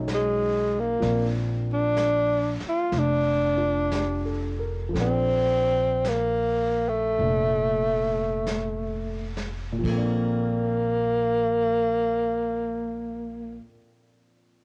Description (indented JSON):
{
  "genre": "jazz ballad",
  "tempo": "42-64 BPM",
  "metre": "4/4",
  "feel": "swing 69% on 8ths",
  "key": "Bb major",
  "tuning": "A4 = 439 Hz",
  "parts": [
    { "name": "breathy tenor saxophone", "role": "melody", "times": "0.0-13.6 s", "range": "Ab3 to F4", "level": "-26 LUFS", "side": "equal", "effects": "none" },
    { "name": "dark grand piano", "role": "accompaniment", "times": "0.0-14.6 s", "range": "Bb2 to Bb4", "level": "-36 LUFS", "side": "equal", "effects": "cassette tape" },
    { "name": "upright bass", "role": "bass", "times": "0.0-13.6 s", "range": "F1 to B1", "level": "-32 LUFS", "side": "equal", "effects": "transformer saturation" },
    { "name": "vintage brush drum kit", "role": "drums", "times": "0.1-10.5 s", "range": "brushed snare drum, crash cymbal, hi-hat, kick drum, snare drum", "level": "-41 LUFS", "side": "equal", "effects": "cassette tape" }
  ],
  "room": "studio ambience",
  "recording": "home recording on cassette",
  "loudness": "-25 LUFS",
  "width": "mono",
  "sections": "0.0-9.8 A section; 9.8-14.6 B section",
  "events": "slowing down 1.0-9.8",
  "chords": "0.0 Badd9; 1.0 Bbmaj9"
}